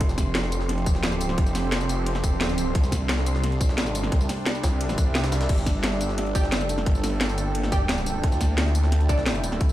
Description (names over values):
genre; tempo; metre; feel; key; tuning
dark technical drum and bass; 175 BPM; 4/4; straight; G dorian; A4 = 440 Hz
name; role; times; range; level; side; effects
sweeping resonant pad; sustained chords; 0.0-9.7 s; C3 to A4; -31 LUFS; right 1 dB; chorus, sidechain pumping
snarling distorted saw bass; bass; 0.0-9.6 s; F1 to D2; -26 LUFS; equal; distortion, overdrive, sidechain pumping
drum and bass drum kit; drums; 0.0-9.7 s; crash cymbal, hi-hat, snare drum, tambourine; -28 LUFS; equal; overdrive, studio ambience
electronic kick drum; drums; 0.0-9.7 s; none; -22 LUFS; equal; overdrive, studio ambience
jungle sampler-style drum kit; drums; 0.0-9.7 s; hi-hat, snare drum; -36 LUFS; equal; overdrive, high-pass filter on hats, studio ambience, high-pass filter on snare
granular cloud pad; texture; 0.0-9.7 s; Bb3 to C6; -32 LUFS; right 1 dB; built-in reverb, sidechain pumping
orchestra-hit-like synth stab; stabs; 6.3-9.2 s; D4 to G5; -33 LUFS; right 1 dB; built-in reverb, tape echo
room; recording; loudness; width
little or no reverb; played on a big sound system in a bare room, stone room reverb; -21 LUFS; side -14 dB against mid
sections
0.0-9.7 A section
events
kick drops out 5.1-5.5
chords
0.0 F; 2.7 Cadd9; 5.5 Gmadd9; 8.2 D5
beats
| 0.01 0.35 0.69 1.03 | 1.38 1.72 2.06 2.41 | 2.75 3.09 3.44 3.78 | 4.12 4.46 4.81 5.15 | 5.49 5.83 6.18 6.52 | 6.86 7.21 7.55 7.89 | 8.23 8.58 8.92 9.26 | 9.61